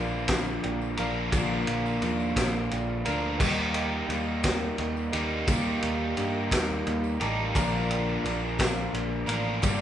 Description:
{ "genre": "folk rock and heartland rock", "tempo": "58 BPM (dotted quarters)", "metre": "6/8", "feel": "straight", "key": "unclear", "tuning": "A4 = 440 Hz", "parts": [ { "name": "picked steel-string acoustic guitar", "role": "accompaniment", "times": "0.0-9.8 s", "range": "G2 to Bb4", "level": "-33 LUFS", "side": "left 4 dB", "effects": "none" }, { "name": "reed electric piano", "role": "accompaniment", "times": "0.0-9.8 s", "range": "Bb4 to A5", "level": "-39 LUFS", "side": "right 6 dB", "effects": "fast tremolo" }, { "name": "overdriven electric guitar", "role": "riff", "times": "0.0-9.8 s", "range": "G2 to Bb4", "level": "-30 LUFS", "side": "right 1 dB", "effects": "none" }, { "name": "picked electric bass", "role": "bass", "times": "0.0-9.8 s", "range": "G1 to G2", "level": "-32 LUFS", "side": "equal", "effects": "none" }, { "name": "vintage drum kit", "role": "drums", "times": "0.3-9.8 s", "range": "crash cymbal, kick drum, ride cymbal, snare drum", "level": "-30 LUFS", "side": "equal", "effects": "none" }, { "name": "tambourine", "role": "percussion", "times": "0.3-9.8 s", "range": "none", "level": "-44 LUFS", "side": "right 7 dB", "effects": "none" } ], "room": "moderate large studio reverb, RT60 0.9 s", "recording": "band playing live in one room, nothing above 10.5 kHz", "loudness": "-25 LUFS", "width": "side -10 dB against mid", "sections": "0.0-9.8 A section", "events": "reed electric piano fill 2.4-3.4", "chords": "0.0 Bb; 3.4 Eb; 7.5 Bb" }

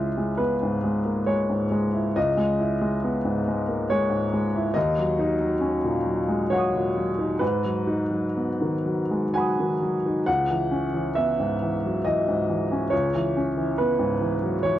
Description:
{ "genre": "neoclassical minimalist piano", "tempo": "59-71 BPM", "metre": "3/4", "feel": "rubato", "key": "C# dorian", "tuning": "A4 = 440 Hz", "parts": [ { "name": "clear upright piano", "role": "solo", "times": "0.0-14.8 s", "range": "C#2 to D#6", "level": "-22 LUFS", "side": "equal", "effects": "none" } ], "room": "light reverb", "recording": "worn, warbling old tape, cassette tape, warbly pitch drift", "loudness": "-22 LUFS", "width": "side -12 dB against mid", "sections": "0.0-14.8 A section", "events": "none", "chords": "0.0 C#m7; 4.8 D#m7; 7.4 G#m7; 10.3 C#m7" }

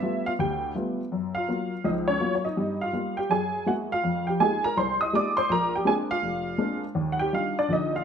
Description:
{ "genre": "solo jazz", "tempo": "164 BPM", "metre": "4/4", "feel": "swing 63% on 8ths", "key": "unclear", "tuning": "A4 = 441 Hz", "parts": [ { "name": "honky-tonk upright piano", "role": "solo", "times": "0.0-8.0 s", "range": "F1 to Eb6", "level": "-24 LUFS", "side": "equal", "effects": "none" } ], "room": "moderate large studio reverb, RT60 1.2 s", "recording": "minimal, uncompressed stereo recording", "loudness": "-24 LUFS", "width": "side -7 dB against mid", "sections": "0.0-8.0 A section", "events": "none", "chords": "0.0 G9; 1.1 Gbmaj7; 2.6 Gm7; 3.3 Gb9; 4.0 Fm11; 5.5 Bb9; 7.0 Ebmaj9" }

